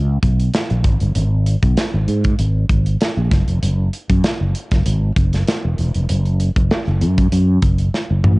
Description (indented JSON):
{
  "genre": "polished 1980s jazz-funk pop",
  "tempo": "97 BPM",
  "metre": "4/4",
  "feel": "swing 54% on 16ths",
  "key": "unclear",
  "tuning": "A4 = 441 Hz",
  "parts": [
    { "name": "fretless electric bass", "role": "bass", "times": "0.0-8.4 s", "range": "E1 to G#2", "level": "-16 LUFS", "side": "equal", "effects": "wide subtle chorus" },
    { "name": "modern studio drum kit", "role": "drums", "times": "0.2-8.4 s", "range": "hi-hat, kick drum, snare drum, toms", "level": "-18 LUFS", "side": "equal", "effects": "none" }
  ],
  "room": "little or no reverb",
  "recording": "home recording on cassette, nothing above 10.6 kHz",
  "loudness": "-15 LUFS",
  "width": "side -23 dB against mid",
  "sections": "0.0-8.4 A section",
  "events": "drum fill 7.9-8.4",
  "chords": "none",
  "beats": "0.54 | 1.15 1.77 2.39 3.01 | 3.62 4.24 4.86 5.47 | 6.09 6.70 7.32 7.93"
}